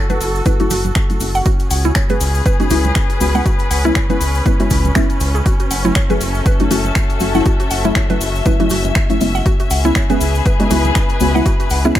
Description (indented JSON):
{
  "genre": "deep house",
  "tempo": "120 BPM",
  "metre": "4/4",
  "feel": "swing 57% on 16ths",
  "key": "F# minor",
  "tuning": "A4 = 440 Hz",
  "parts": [
    { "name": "mallet-like synth pluck", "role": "arpeggios", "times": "0.0-12.0 s", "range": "E4 to F#5", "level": "-24 LUFS", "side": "right 2 dB", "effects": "chorus, sidechain pumping, ping-pong delay" },
    { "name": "deep mellow chord stab", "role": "stabs", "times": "0.0-12.0 s", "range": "F#3 to G#4", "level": "-20 LUFS", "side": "left 1 dB", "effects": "chorus" },
    { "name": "muted studio string section", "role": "texture", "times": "0.0-12.0 s", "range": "C#4 to E5", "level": "-22 LUFS", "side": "left 3 dB", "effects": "sidechain pumping" },
    { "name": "house drum kit", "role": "drums", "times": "0.1-12.0 s", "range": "finger snaps, hi-hat", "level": "-24 LUFS", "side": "left 1 dB", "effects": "none" },
    { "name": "cabasa", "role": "percussion", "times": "0.1-12.0 s", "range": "none", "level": "-30 LUFS", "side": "left 3 dB", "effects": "none" },
    { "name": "congas", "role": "percussion", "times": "0.1-10.9 s", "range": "none", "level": "-26 LUFS", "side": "right 8 dB", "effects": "sidechain pumping on perc" },
    { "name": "round analog bass", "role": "bass", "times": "0.2-11.9 s", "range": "F#1 to C#2", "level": "-18 LUFS", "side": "equal", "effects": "sidechain pumping" },
    { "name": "electronic kick drum", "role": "drums", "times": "0.5-12.0 s", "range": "none", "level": "-17 LUFS", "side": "equal", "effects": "none" }
  ],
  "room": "little or no reverb",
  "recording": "none",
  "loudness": "-13 LUFS",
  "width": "side -12 dB against mid",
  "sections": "0.0-12.0 A section",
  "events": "filter sweep on synth stab 0.0-12.0",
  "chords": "0.0 F#m7; 1.5 C#m7; 5.5 F#m7; 9.5 C#m7",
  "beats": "0.46 0.96 | 1.46 1.96 2.46 2.96 | 3.46 3.96 4.46 4.96 | 5.46 5.96 6.46 6.96 | 7.46 7.96 8.46 8.96 | 9.46 9.96 10.46 10.96 | 11.46 11.96"
}